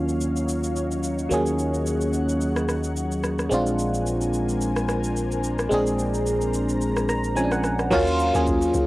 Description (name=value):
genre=amapiano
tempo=109 BPM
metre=4/4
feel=swing 55% on 16ths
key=Eb dorian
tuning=A4 = 441 Hz
part: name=barking FM electric piano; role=accompaniment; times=0.0-8.9 s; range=F3 to Bb5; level=-23 LUFS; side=equal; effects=chorus, low-pass filter, cassette tape
part: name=ethereal airy pad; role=sustained chords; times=0.0-8.9 s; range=Gb3 to Bb5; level=-32 LUFS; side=left 1 dB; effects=ensemble chorus, built-in reverb, low-pass filter, cassette tape
part: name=fingered electric bass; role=bass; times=0.0-7.9 s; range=Bb1 to Eb2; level=-28 LUFS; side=equal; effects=none
part: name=afro-pop drum kit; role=drums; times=0.1-8.9 s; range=crash cymbal, kick drum, rim click, shaker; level=-31 LUFS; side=equal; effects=none
part: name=deep log drum bass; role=bass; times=7.9-8.9 s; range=Db2 to Eb2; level=-25 LUFS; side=equal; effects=none
room=moderate booth ambience, RT60 0.2 s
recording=home recording on cassette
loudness=-21 LUFS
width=side -18 dB against mid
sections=0.0-7.9 A section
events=filter sweep 0.0-7.9; FM electric piano fill 6.8-7.9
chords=0.0 Ebm9; 3.5 Bb9; 7.9 Ebm9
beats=0.21 0.76 | 1.31 1.86 2.41 2.96 | 3.51 4.06 4.62 5.17 | 5.71 6.27 6.82 7.37 | 7.92 8.47